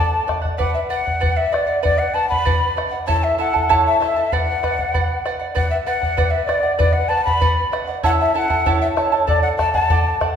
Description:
andean folk, Andean ensemble; 97 BPM; 2/4; straight; B minor; A4 = 441 Hz
breathy mellow quena; melody; 0.0-10.2 s; C#5 to B5; -20 LUFS; left 2 dB
charango; accompaniment; 0.0-10.4 s; E4 to A5; -21 LUFS; right 3 dB
bombo; percussion; 0.3-10.4 s; -22 LUFS; left 1 dB
wet recital hall reverb, RT60 1.7 s; recorded in a church or concert hall; -16 LUFS; side -8 dB against mid
0.0-5.6 A section; 5.6-10.4 A section
0.0 D; 0.6 Bm; 3.1 A; 4.3 Bm; 8.0 A; 9.3 D
| 0.59 1.21 | 1.83 2.45 | 3.08 3.70 | 4.32 4.94 | 5.56 6.18 | 6.80 7.42 | 8.04 8.66 | 9.28 9.90

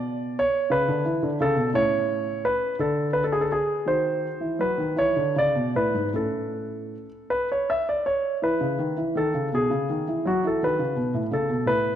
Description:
classical, baroque-style suite movement for grand piano; 51-59 BPM (dotted quarters); 6/8; rubato; A major, E major from 8.4 s; A4 = 440 Hz
warm grand piano; solo; 0.0-12.0 s; G#2 to E5; -22 LUFS; equal
moderate concert hall reverb, RT60 2.1 s; -22 LUFS; side -10 dB against mid
0.0-8.4 A section; 8.4-12.0 A section
0.0 N.C.; 0.7 Bm11; 1.7 Aadd9; 2.8 N.C.; 3.9 D#m6; 5.0 E7; 6.1 A; 8.4 E5; 9.5 B; 10.6 B7(no3)
0.69 | 1.72 2.78 | 3.86 4.97 | 6.12 7.28 | 8.41 9.52 | 10.61 11.66

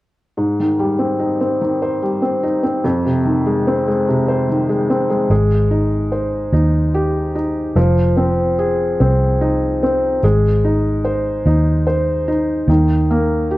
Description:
pop; 49 BPM (dotted quarters); 6/8; straight; Ab major; A4 = 439 Hz
felt-muted upright piano; accompaniment; 0.4-13.6 s; F2 to C5; -16 LUFS; equal
vintage muted fingered electric bass; bass; 5.3-13.6 s; F1 to Eb2; -17 LUFS; right 1 dB
moderate echo chamber reverb, RT60 1.7 s, studio ambience; worn, warbling old tape, cassette tape, warbly pitch drift; -14 LUFS; side -17 dB against mid
0.4-5.3 A section; 5.3-13.6 B section
0.4 Abmaj7; 2.8 Fm7; 5.3 Abmaj7; 7.8 Fm7; 10.2 Ab; 12.7 Eb5
| 0.38 1.61 | 2.84 4.07 | 5.30 6.53 | 7.76 9.00 | 10.23 11.46 | 12.69

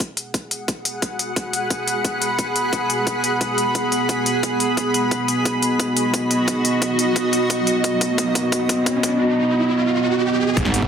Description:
dark technical drum and bass; 176 BPM; 4/4; straight; A4 = 439 Hz
dark analog pad; sustained chords; 0.0-10.9 s; B3 to F#5; -22 LUFS; right 2 dB; wide subtle chorus, sidechain pumping
drum and bass drum kit; drums; 0.0-10.8 s; hi-hat, snare drum; -24 LUFS; left 2 dB; small room ambience
electronic kick drum; drums; 0.0-10.9 s; -24 LUFS; equal; overdrive, high-pass filter on kick, small room ambience
granular cloud pad; texture; 0.6-9.2 s; F#4 to B5; -22 LUFS; left 1 dB; built-in reverb, sidechain pumping
riser and impact; sound effects; 6.9-10.9 s; -26 LUFS; right 2 dB
snarling distorted saw bass; bass; 10.6-10.9 s; G#1; -20 LUFS; equal; distortion, sidechain pumping
light reverb; dense, heavily limited modern master; -18 LUFS; side -7 dB against mid
0.0-10.6 A section
build-up 0.0-10.6; drum fill 5.1-9.2; riser 6.9-10.6; impact 10.6-10.9
0.0 G#m7; 5.1 B
0.00 0.34 0.68 | 1.02 1.36 1.71 2.05 | 2.39 2.73 3.07 3.41 | 3.75 4.09 4.43 4.77 | 5.11 5.46 5.80 6.14 | 6.48 6.82 7.16 7.50 | 7.84 8.18 8.52 8.86 | 9.21 9.55 9.89 10.23 | 10.57

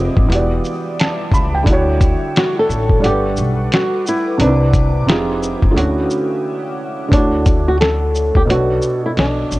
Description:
lo-fi hip hop; 88 BPM; 4/4; swing 60% on 16ths; D major; A4 = 442 Hz
flamenco guitar; melody; 0.0-9.6 s; D4 to A4; -19 LUFS; equal; low-pass filter
felt-muted upright piano; accompaniment; 0.0-9.6 s; B2 to B5; -19 LUFS; right 2 dB; cassette tape, low-pass filter
granular cloud pad; sustained chords; 0.0-7.1 s; G3 to D6; -29 LUFS; left 2 dB; built-in reverb, low-pass filter
upright bass; bass; 0.0-9.6 s; E1 to D2; -19 LUFS; equal; transformer saturation
lo-fi sampler-style drum kit; drums; 0.2-9.6 s; hi-hat, kick drum, shaker, snare drum; -16 LUFS; equal
small room ambience; worn, warbling old tape, cassette tape, warbly pitch drift; -13 LUFS; side -19 dB against mid
0.0-7.1 A section; 7.1-9.6 B section
break 6.4-7.1
0.3 Em9; 1.7 Dmaj7; 3.0 Gmaj7; 4.4 Cmaj9; 5.1 Fm9; 5.8 Dmaj9; 8.5 Bm7
0.30 0.98 | 1.66 2.35 3.03 3.71 | 4.39 5.07 5.75 6.43 | 7.12 7.80 8.48 9.16

